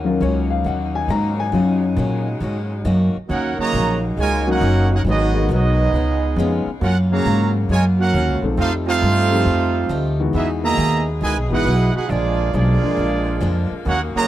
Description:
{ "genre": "jazz", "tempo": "136 BPM", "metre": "4/4", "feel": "swing 67% on 8ths", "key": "Eb minor", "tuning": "A4 = 439 Hz", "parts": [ { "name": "picked swing-style acoustic guitar", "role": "accompaniment", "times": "0.0-14.2 s", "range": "Ab2 to G#4", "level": "-31 LUFS", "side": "left 4 dB", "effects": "none" }, { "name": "warm concert grand piano", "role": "accompaniment", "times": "0.0-13.4 s", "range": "Fb3 to Bb5", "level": "-22 LUFS", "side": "left 5 dB", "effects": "none" }, { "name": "bright saxophone section", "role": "sustained chords", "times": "0.0-14.3 s", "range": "B2 to G#4", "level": "-31 LUFS", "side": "left 1 dB", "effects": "none" }, { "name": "upright bass", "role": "bass", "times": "0.0-14.2 s", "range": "Gb1 to Bb2", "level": "-19 LUFS", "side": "equal", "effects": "none" }, { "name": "bright trumpet section", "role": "melody", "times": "3.3-14.3 s", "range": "Bb3 to Bb5", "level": "-22 LUFS", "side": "right 3 dB", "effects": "none" }, { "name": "brilliant trombone section", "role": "second line", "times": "3.3-14.3 s", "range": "B2 to Gb4", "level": "-24 LUFS", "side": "right 5 dB", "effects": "none" } ], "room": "small room ambience", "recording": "dry, close 1970s-style studio recording", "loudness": "-16 LUFS", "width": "side -13 dB against mid", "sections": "0.0-3.3 A section; 3.3-14.3 B section", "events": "grand piano solo 0.0-3.3", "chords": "0.0 Ebm7; 5.0 Abm7; 5.9 Db7; 6.8 Gbmaj7; 8.6 F9; 10.3 Emaj7; 12.1 Bb7" }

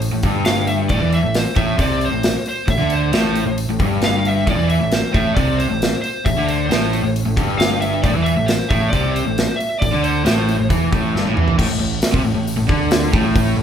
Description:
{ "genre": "hard rock", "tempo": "135 BPM", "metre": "4/4", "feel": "straight", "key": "A minor", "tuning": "A4 = 443 Hz", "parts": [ { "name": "overdriven electric guitar", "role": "riff", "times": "0.0-13.6 s", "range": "G2 to E3", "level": "-23 LUFS", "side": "left 8 dB", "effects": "spring reverb" }, { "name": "overdriven semi-hollow guitar", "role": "riff", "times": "0.0-13.6 s", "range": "G2 to E3", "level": "-22 LUFS", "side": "right 6 dB", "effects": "none" }, { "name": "overdriven fingered electric bass", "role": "bass", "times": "0.0-13.6 s", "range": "G1 to E2", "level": "-23 LUFS", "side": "equal", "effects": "none" }, { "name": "big rock drum kit", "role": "drums", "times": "0.0-13.5 s", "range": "crash cymbal, hi-hat, kick drum, snare drum, toms", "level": "-20 LUFS", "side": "equal", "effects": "none" }, { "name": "lead guitar through a small cranked amp", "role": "melody", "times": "0.5-10.7 s", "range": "C5 to F5", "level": "-22 LUFS", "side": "equal", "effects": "overdrive" } ], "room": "moderate large studio reverb, RT60 1.3 s", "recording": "band playing live in one room", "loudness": "-15 LUFS", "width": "side -8 dB against mid", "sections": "0.0-11.6 A section; 11.6-13.6 B section", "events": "drum fill 11.1-11.6", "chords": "0.0 Am" }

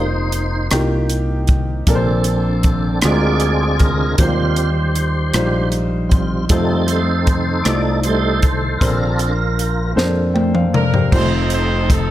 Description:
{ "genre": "slow gospel", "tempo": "52 BPM (dotted quarters)", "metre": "6/8", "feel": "straight", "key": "Bb major", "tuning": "A4 = 439 Hz", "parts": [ { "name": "warm upright piano", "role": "accompaniment", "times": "0.0-12.1 s", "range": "Bb2 to G5", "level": "-22 LUFS", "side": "equal", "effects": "none" }, { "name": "tonewheel organ", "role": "sustained chords", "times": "0.0-12.1 s", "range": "F3 to D5", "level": "-21 LUFS", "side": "right 1 dB", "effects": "slow rotary speaker, chorus vibrato" }, { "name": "fingered electric bass", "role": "bass", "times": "0.0-12.1 s", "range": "F1 to F2", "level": "-19 LUFS", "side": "equal", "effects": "none" }, { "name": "crisp fusion drum kit", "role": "drums", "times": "0.3-12.1 s", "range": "crash cymbal, hi-hat, kick drum, rim click, snare drum, toms", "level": "-18 LUFS", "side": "equal", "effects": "none" }, { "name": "warm horn section", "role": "melody", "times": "10.8-12.1 s", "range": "C4 to C5", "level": "-21 LUFS", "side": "right 2 dB", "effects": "none" } ], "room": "light reverb", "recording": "none", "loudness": "-14 LUFS", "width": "side -13 dB against mid", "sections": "0.0-11.1 A section", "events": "tonewheel organ solo 0.0-11.1; drum fill 10.0-11.1", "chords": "0.0 F7sus4; 1.9 Bbmaj9; 3.0 Bb7/D; 4.2 Eb69; 6.5 F7; 8.8 Bbmaj9; 11.1 F7" }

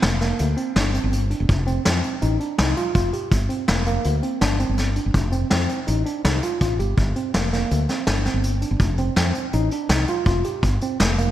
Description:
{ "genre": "progressive instrumental, band music in an uneven meter", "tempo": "164 BPM", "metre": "5/4", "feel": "straight", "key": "G minor", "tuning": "A4 = 440 Hz", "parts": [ { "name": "tine electric piano", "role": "arpeggios", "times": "0.0-11.3 s", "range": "Bb3 to G4", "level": "-25 LUFS", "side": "equal", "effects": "medium stereo tremolo" }, { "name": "woody fretless electric bass", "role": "bass", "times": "0.0-11.3 s", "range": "E1 to F2", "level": "-22 LUFS", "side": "equal", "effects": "wide subtle chorus" }, { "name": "vintage brush drum kit", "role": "drums", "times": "0.0-11.3 s", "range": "hi-hat, kick drum, snare drum", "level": "-23 LUFS", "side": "equal", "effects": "none" } ], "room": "light reverb, studio reverb", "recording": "bright 1980s-style digital production", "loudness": "-19 LUFS", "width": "side -12 dB against mid", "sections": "0.0-11.3 A section", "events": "none", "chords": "0.0 Gm7; 1.5 F7(no3); 3.3 Gm7; 5.1 F7; 7.0 Gm7; 8.8 F7(no3); 10.6 Gm7" }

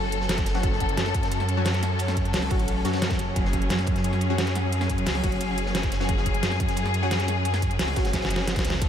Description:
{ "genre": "dark technical drum and bass", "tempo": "176 BPM", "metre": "4/4", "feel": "straight", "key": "F# minor", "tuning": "A4 = 439 Hz", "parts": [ { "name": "warm studio string section", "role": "sustained chords", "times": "0.0-8.9 s", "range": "F#3 to A4", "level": "-28 LUFS", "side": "left 1 dB", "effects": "sidechain pumping" }, { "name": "orchestra-hit-like synth stab", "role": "stabs", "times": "0.0-8.7 s", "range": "F#3 to F#4", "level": "-34 LUFS", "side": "left 2 dB", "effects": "built-in reverb, analog delay" }, { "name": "wide detuned saw bass", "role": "bass", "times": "0.0-8.9 s", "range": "F#1 to F#2", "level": "-27 LUFS", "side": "equal", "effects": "chorus, sidechain pumping" }, { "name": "crunchy breakbeat drum kit", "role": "drums", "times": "0.1-8.9 s", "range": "hi-hat, ride cymbal, snare drum", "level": "-39 LUFS", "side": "equal", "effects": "high-pass filter on cymbals, high-pass filter on hats, high-pass filter on snare, high-pass filter on room" }, { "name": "dubstep drum kit", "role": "drums", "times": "0.1-8.9 s", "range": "hi-hat, snare drum", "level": "-30 LUFS", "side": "right 1 dB", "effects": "none" }, { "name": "electronic kick drum", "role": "drums", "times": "0.4-8.9 s", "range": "none", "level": "-27 LUFS", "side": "equal", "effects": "none" } ], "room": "moderate huge ambient reverb, RT60 7.2 s", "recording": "dreamy mix soaked in reverb", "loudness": "-22 LUFS", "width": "side -9 dB against mid", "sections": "0.0-8.9 A section", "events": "drum fill 8.1-8.8", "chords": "0.0 F#m" }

